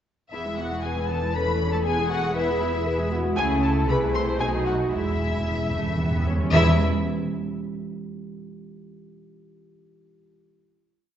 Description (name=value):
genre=quick classical-period movement for symphony orchestra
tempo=117 BPM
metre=3/4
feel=straight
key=E major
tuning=A4 = 440 Hz
part: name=muted studio violin section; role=melody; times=0.3-6.8 s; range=E5 to C6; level=-29 LUFS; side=left 4 dB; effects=none
part: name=muted studio violin section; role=second line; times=0.3-6.8 s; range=E4 to C5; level=-31 LUFS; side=left 2 dB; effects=none
part: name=muted studio viola section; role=accompaniment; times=0.3-6.8 s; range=E3 to G#4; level=-30 LUFS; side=right 1 dB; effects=none
part: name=mellow French horn section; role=sustained chords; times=0.3-6.7 s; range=G#3 to B4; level=-29 LUFS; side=left 2 dB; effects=none
part: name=muted studio cello section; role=bass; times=0.3-6.8 s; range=E2 to C#3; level=-29 LUFS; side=right 1 dB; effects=none
part: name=muted studio double bass section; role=bass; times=0.3-6.8 s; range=E1 to C#2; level=-28 LUFS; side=right 1 dB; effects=none
part: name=timpani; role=percussion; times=4.9-6.8 s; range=E2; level=-28 LUFS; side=right 1 dB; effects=none
room=wet scoring stage reverb, RT60 1.6 s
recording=heard from further back in the room, nothing above 7.6 kHz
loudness=-22 LUFS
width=side -10 dB against mid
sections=0.3-6.5 A section; 6.5-8.1 final chord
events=timpani fill 4.9-6.5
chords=0.3 E; 1.3 A/E; 1.9 E; 3.4 A/C#; 3.9 Am/C; 4.4 B7; 4.9 E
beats=| 0.32 0.83 1.34 | 1.85 2.36 2.87 | 3.38 3.88 4.40 | 4.92 5.46 6.00 | 6.53